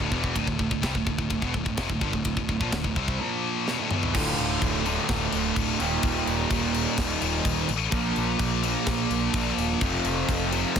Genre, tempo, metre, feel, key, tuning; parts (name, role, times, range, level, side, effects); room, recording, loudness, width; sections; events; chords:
heavy metal; 127 BPM; 4/4; straight; D phrygian; A4 = 442 Hz
distorted electric guitar; riff; 0.0-10.8 s; D2 to C4; -30 LUFS; right 10 dB; distortion
heavy high-gain guitar; riff; 0.0-10.8 s; D2 to C4; -29 LUFS; left 12 dB; distortion
fuzz picked electric bass; bass; 0.0-10.8 s; D1 to C2; -31 LUFS; equal; overdrive
tight metal drum kit; drums; 0.0-10.8 s; crash cymbal, kick drum, ride cymbal, snare drum, toms; -29 LUFS; left 1 dB; soft clipping on kick
raw garage guitar; riff; 4.1-10.8 s; D2 to Bb4; -30 LUFS; right 1 dB; overdrive
little or no reverb; dense, heavily limited modern master; -23 LUFS; side -7 dB against mid
0.0-4.1 A section; 4.1-10.8 B section
drum fill 3.7-4.1; half time 4.1-10.8
0.0 Dm; 3.2 Bb5; 3.7 D5; 4.1 Dm; 5.8 Eb; 7.9 Bb; 9.8 F